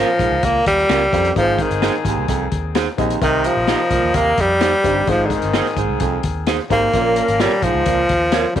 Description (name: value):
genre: uptempo 1960s-style soul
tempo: 129 BPM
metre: 4/4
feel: straight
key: unclear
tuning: A4 = 440 Hz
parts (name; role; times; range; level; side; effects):
- breathy tenor saxophone; melody; 0.0-8.6 s; D3 to Bb3; -17 LUFS; equal; none
- mellow horn section; second line; 0.0-8.5 s; Eb3 to Bb4; -27 LUFS; left 10 dB; none
- warm concert grand piano; accompaniment; 0.0-8.6 s; Ab2 to Eb5; -25 LUFS; left 10 dB; none
- electric guitar through a small old amp; stabs; 0.0-8.4 s; Db4 to Db5; -23 LUFS; right 10 dB; none
- vintage muted fingered electric bass; bass; 0.0-8.6 s; G1 to F2; -24 LUFS; equal; none
- breathy baritone saxophone; riff; 0.2-8.6 s; Eb2 to C3; -24 LUFS; right 12 dB; none
- crunchy breakbeat drum kit; drums; 0.2-8.6 s; hi-hat, kick drum, snare drum; -24 LUFS; left 4 dB; none
room: light reverb, small room ambience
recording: 1960s-style stereo with parts hard left and right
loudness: -15 LUFS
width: side -10 dB against mid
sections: 0.0-8.6 A section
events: none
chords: 0.0 Bbm; 1.4 Ab; 3.2 Cm; 5.1 Ab; 6.9 Bbm